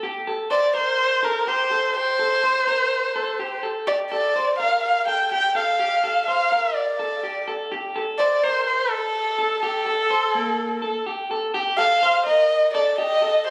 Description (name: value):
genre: indie pop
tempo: 125 BPM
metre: 4/4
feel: straight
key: unclear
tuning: A4 = 439 Hz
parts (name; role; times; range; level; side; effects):
- electric guitar through a small old amp; arpeggios; 0.0-13.5 s; Bb3 to C5; -29 LUFS; equal; slapback echo
- dark erhu; melody; 0.5-13.5 s; A4 to G5; -22 LUFS; equal; slapback echo
room: light reverb, studio reverb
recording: recorded on a phone in the room, club reverb, compression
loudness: -22 LUFS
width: mono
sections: 0.0-11.5 A section; 11.5-13.5 B section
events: none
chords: 0.0 C5; 7.7 Bbmaj7sus2; 11.5 C5